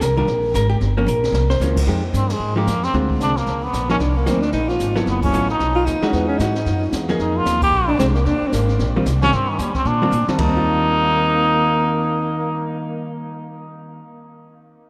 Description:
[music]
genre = jazz, small-group swing and bop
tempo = 226 BPM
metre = 4/4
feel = swing 60% on 8ths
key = Eb major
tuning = A4 = 444 Hz
[part]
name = vintage hollow-body jazz guitar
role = accompaniment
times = 0.0-14.1 s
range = D3 to C5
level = -25 LUFS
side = equal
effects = none
[part]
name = upright bass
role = bass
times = 0.0-14.0 s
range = Gb1 to Bb2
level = -24 LUFS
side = equal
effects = none
[part]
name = jazz brush drum kit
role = drums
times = 0.0-10.6 s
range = brushed snare drum, crash cymbal, hi-hat, kick drum, ride cymbal, snare drum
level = -30 LUFS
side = equal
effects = none
[part]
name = trombone with metal mute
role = melody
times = 2.2-13.3 s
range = Eb3 to G4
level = -24 LUFS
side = equal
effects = none
[part]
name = clear alto saxophone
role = second line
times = 4.0-13.3 s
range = Bb3 to F4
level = -26 LUFS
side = equal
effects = none
[sound]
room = wet cathedral reverb, RT60 6.0 s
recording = in a vast, echoing space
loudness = -19 LUFS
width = mono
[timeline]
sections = 0.0-1.9 A section; 1.9-10.4 B section; 10.4-12.5 C section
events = drum fill 1.1-1.6, 10.1; band accent 2.3, 5.2, 7.6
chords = 0.0 Eb; 0.8 Gm7b5; 1.3 C7b9; 1.9 Fm9; 2.9 Dm7b5; 3.5 Db7; 4.0 Cm11; 5.1 Gbm7; 5.6 B; 6.1 Emaj9; 7.2 Fm7; 7.7 Bb13; 8.3 Eb69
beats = 0.01 0.28 0.54 | 0.81 1.07 1.34 1.60 | 1.87 2.14 2.40 2.67 | 2.94 3.20 3.47 3.73 | 4.00 4.26 4.53 4.80 | 5.06 5.33 5.59 5.86 | 6.13 6.39 6.66 6.93 | 7.19 7.46 7.72 7.99 | 8.26 8.52 8.79 9.05 | 9.32 9.59 9.85 10.12 | 10.38 10.65 10.92 11.18 | 11.45 11.72 11.98 12.25

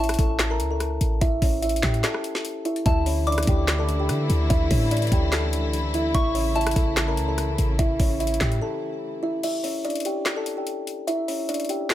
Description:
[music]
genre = hip hop, trap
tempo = 146 BPM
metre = 4/4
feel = half-time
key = unclear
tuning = A4 = 440 Hz
[part]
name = kalimba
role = melody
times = 0.0-11.9 s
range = C#4 to Bb5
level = -26 LUFS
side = equal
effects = ping-pong delay
[part]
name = soft synth bell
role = second line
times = 0.0-7.7 s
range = A5 to D6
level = -32 LUFS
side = left 3 dB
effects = chorus, tremolo, ping-pong delay
[part]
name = clean 808-style bass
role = bass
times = 0.0-8.6 s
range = A1 to D3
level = -24 LUFS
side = equal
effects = none
[part]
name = trap drum kit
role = drums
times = 0.0-11.9 s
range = crash cymbal, handclaps, hi-hat, kick drum, rim click, snare drum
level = -25 LUFS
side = equal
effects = none
[part]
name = dark studio string section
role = sustained chords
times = 2.9-9.4 s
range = C#3 to E4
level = -30 LUFS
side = equal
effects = none
[sound]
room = little or no reverb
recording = none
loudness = -21 LUFS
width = side -13 dB against mid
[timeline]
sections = 0.0-9.4 A section; 9.4-11.9 B section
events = break 2.0-2.9, 8.6-9.4, 9.4-11.9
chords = 0.0 A; 2.9 Dsus2; 6.1 A; 9.4 Dsus2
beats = 0.39 0.80 | 1.21 1.62 2.04 2.45 | 2.86 3.27 3.68 4.09 | 4.50 4.91 5.32 5.74 | 6.15 6.56 6.97 7.38 | 7.79 8.20 8.61 9.02 | 9.43 9.84 10.26 10.67 | 11.08 11.49 11.90

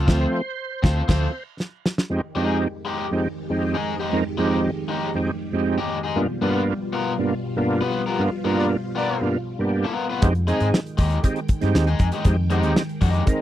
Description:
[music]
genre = funk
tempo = 118 BPM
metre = 4/4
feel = straight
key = unclear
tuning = A4 = 440 Hz
[part]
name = overdriven electric guitar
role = accompaniment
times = 0.0-13.2 s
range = Ab3 to B4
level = -26 LUFS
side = left 4 dB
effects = none
[part]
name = overdriven tonewheel organ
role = stabs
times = 0.0-13.4 s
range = F2 to C5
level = -22 LUFS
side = right 2 dB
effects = chorus vibrato, slow rotary speaker
[part]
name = vintage muted fingered electric bass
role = bass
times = 0.0-1.3, 10.2-13.2 s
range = D2 to Ab2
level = -21 LUFS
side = equal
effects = none
[part]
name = damped 70s drum kit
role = drums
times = 0.1-2.1, 10.2-13.4 s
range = crash cymbal, hi-hat, kick drum, snare drum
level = -20 LUFS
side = equal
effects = none
[part]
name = string machine, full ensemble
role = sustained chords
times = 2.1-13.4 s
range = F2 to G5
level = -30 LUFS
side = equal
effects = phaser, ensemble chorus
[part]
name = warm horn section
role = second line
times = 8.6-9.3 s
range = D4 to D5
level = -27 LUFS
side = left 1 dB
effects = none
[sound]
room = little or no reverb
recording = dry, close 1970s-style studio recording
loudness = -20 LUFS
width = side -12 dB against mid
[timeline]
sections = 0.0-2.1 A section; 2.1-13.4 B section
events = tonewheel organ solo 0.0-2.1; band accent 0.1-2.1, 8.2-10.2; drum fill 1.6-2.1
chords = 0.0 Dm7; 2.1 Fm9; 6.2 G7#9; 10.2 Fm9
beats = | 0.07 0.58 1.09 1.60 | 2.10 2.61 3.12 3.62 | 4.13 4.64 5.15 5.66 | 6.16 6.67 7.18 7.69 | 8.19 8.70 9.21 9.72 | 10.23 10.73 11.24 11.75 | 12.26 12.76 13.27

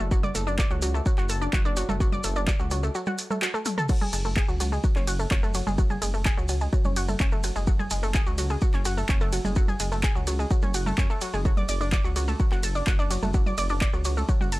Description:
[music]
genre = melodic techno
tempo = 127 BPM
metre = 4/4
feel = straight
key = F# minor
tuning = A4 = 439 Hz
[part]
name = analog pluck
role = arpeggios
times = 0.0-14.6 s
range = F#3 to D6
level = -30 LUFS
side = equal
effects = chorus, sidechain pumping, analog delay
[part]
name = dark detuned saw bass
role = bass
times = 0.0-14.6 s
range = F#1 to F#2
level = -28 LUFS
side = equal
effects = tube saturation, sidechain pumping
[part]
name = electronic kick drum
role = drums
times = 0.1-14.4 s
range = none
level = -24 LUFS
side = equal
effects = none
[part]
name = maracas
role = percussion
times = 0.1-14.6 s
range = none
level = -38 LUFS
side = right 3 dB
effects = none
[part]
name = punchy analog drum machine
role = drums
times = 0.2-14.6 s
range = congas, crash cymbal, handclaps, hi-hat, ride cymbal, rim click, toms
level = -31 LUFS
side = right 1 dB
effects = overdrive
[sound]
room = little or no reverb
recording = dry, gritty hardware recording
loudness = -22 LUFS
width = side -19 dB against mid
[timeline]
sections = 0.0-14.6 A section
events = drum fill 3.7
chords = 0.0 D/F#; 3.9 F#madd9; 11.5 D/F#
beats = | 0.11 0.59 1.06 1.53 | 2.00 2.48 2.95 3.42 | 3.89 4.37 4.84 5.31 | 5.78 6.25 6.73 7.20 | 7.67 8.14 8.62 9.09 | 9.56 10.03 10.51 10.98 | 11.45 11.92 12.40 12.87 | 13.34 13.81 14.29

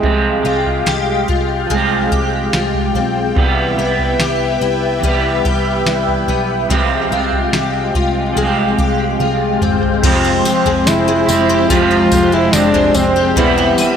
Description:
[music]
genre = dream pop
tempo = 72 BPM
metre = 4/4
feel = straight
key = unclear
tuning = A4 = 442 Hz
[part]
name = clear French horn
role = melody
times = 0.0-1.3, 10.0-14.0 s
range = Ab3 to F4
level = -16 LUFS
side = right 1 dB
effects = tape echo
[part]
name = clean electric guitar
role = accompaniment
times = 0.0-14.0 s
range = E2 to G4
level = -19 LUFS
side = right 4 dB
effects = harmonic tremolo, lush chorus
[part]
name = phased analog pad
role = sustained chords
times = 0.0-14.0 s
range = Ab3 to C6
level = -19 LUFS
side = left 1 dB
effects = phaser, chorus
[part]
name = picked twelve-string acoustic guitar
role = arpeggios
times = 0.0-14.0 s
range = C3 to B4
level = -19 LUFS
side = left 5 dB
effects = ensemble chorus, tape echo
[part]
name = vintage muted picked electric bass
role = bass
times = 0.0-13.7 s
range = E1 to C2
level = -22 LUFS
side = equal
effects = none
[part]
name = soft vintage rhythm box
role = drums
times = 0.0-14.0 s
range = crash cymbal, kick drum, snare drum, tambourine, toms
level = -20 LUFS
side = equal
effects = none
[sound]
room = moderate lush hall reverb, RT60 3.0 s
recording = none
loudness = -12 LUFS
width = side -8 dB against mid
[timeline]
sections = 0.0-10.0 A section; 10.0-14.0 B section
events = drum fill 9.2-10.0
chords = 0.0 Fmadd9/C; 10.0 Fmadd9; 13.4 Cmaj7/E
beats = | 0.03 0.87 1.70 2.53 | 3.37 4.20 5.03 5.87 | 6.70 7.53 8.37 9.20 | 10.03 10.87 11.70 12.53 | 13.37

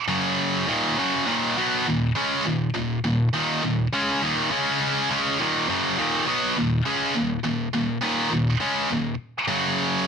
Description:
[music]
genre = metal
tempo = 102 BPM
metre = 4/4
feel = straight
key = Eb minor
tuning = A4 = 440 Hz
[part]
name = heavy high-gain guitar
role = solo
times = 0.1-10.1 s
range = Eb2 to Db4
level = -21 LUFS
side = equal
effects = distortion
[sound]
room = light reverb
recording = none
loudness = -21 LUFS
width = side -6 dB against mid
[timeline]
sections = 0.0-10.1 A section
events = none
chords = 0.1 Gb5; 0.7 Ebm; 4.5 Db5; 5.1 Ebm; 9.5 Gb5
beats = 0.09 | 0.68 1.27 1.86 2.45 | 3.04 3.63 4.22 4.80 | 5.39 5.98 6.56 7.15 | 7.74 8.32 8.91 9.49

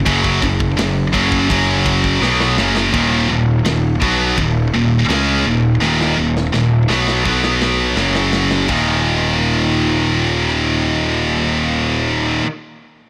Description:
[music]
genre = heavy metal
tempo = 83 BPM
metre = 4/4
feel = straight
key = Eb minor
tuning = A4 = 441 Hz
[part]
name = fuzz picked electric bass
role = bass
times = 0.0-12.4 s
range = Eb1 to Db2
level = -22 LUFS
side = equal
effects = overdrive
[part]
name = heavy high-gain guitar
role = riff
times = 0.1-12.5 s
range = Eb2 to Db4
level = -20 LUFS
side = equal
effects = distortion
[part]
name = scooped high-gain guitar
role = riff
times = 0.1-12.5 s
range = Eb2 to Db4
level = -22 LUFS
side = equal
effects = distortion
[part]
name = tight metal drum kit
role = drums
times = 0.1-10.7 s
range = crash cymbal, kick drum, ride cymbal, rim click, snare drum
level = -26 LUFS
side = equal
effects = soft clipping on kick
[sound]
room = little or no reverb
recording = blown-out, overdriven recording, overdrive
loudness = -16 LUFS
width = mono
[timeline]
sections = 0.0-2.9 A section; 2.9-8.7 B section; 8.7-11.6 C section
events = drum fill 2.2-2.9, 5.8-8.7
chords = 0.0 Gb5; 2.9 Ebm; 7.3 B5; 8.0 Gb5; 8.7 Eb5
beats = | 0.06 0.78 1.50 2.22 | 2.94 3.65 4.37 5.09 | 5.81 6.53 7.25 7.97 | 8.69 9.41 10.13 10.85

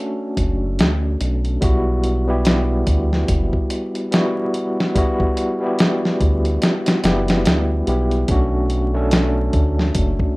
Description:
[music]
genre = trip hop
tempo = 72 BPM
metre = 4/4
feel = swing 59% on 16ths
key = unclear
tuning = A4 = 442 Hz
[part]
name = overdriven tine electric piano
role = accompaniment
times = 0.0-10.4 s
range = G3 to A4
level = -21 LUFS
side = equal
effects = tremolo, tape echo
[part]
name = round analog bass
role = bass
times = 0.4-10.2 s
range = F#1 to D2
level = -20 LUFS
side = equal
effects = none
[part]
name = dusty soul sampler-style drum kit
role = drums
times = 0.4-10.4 s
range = hi-hat, kick drum, snare drum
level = -19 LUFS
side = equal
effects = none
[sound]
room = light reverb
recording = rough home demo mix, vinyl crackle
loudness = -16 LUFS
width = side -22 dB against mid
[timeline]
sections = 0.0-10.4 A section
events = none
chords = 0.0 Bm7; 1.6 Emadd9; 8.3 Bm7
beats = 0.79 | 1.62 2.45 3.29 4.12 | 4.95 5.79 6.62 7.45 | 8.29 9.12 9.95

